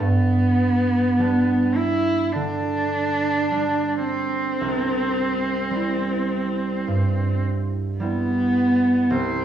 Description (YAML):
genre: classical, romantic duo for cello and harp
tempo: 53 BPM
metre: 4/4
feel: rubato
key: G major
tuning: A4 = 440 Hz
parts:
  - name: rich cello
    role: melody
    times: 0.0-9.4 s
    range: B3 to E4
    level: -21 LUFS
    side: right 1 dB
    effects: none
  - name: concert harp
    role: accompaniment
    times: 0.0-9.4 s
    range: C2 to E4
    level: -24 LUFS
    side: right 2 dB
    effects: none
room: wet recital hall reverb, RT60 1.4 s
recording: worn, warbling old tape, cassette tape, warbly pitch drift, studio ambience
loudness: -19 LUFS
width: side -10 dB against mid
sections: 0.0-9.4 A section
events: none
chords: 0.0 G; 4.6 C